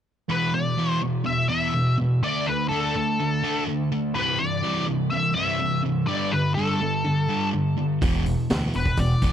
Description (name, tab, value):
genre	classic rock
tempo	124 BPM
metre	4/4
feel	straight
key	E minor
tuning	A4 = 440 Hz
part	octave-fuzz lead guitar	melody	0.3-9.3 s	A4 to E5	-26 LUFS	left 2 dB	wah, distortion, tape echo
part	sludgy distorted guitar	riff	0.3-9.3 s	E2 to D4	-23 LUFS	equal	overdrive
part	growling fingered electric bass	bass	8.0-9.3 s	E1 to D2	-25 LUFS	equal	overdrive
part	raw garage drum kit	drums	8.0-9.3 s	hi-hat, kick drum, snare drum	-26 LUFS	equal	none
room	small room ambience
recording	dry, close 1970s-style studio recording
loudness	-21 LUFS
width	side -9 dB against mid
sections	0.3-9.3 A section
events	none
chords	0.3 E5; 2.2 D5; 4.2 C; 6.1 G5; 8.0 E5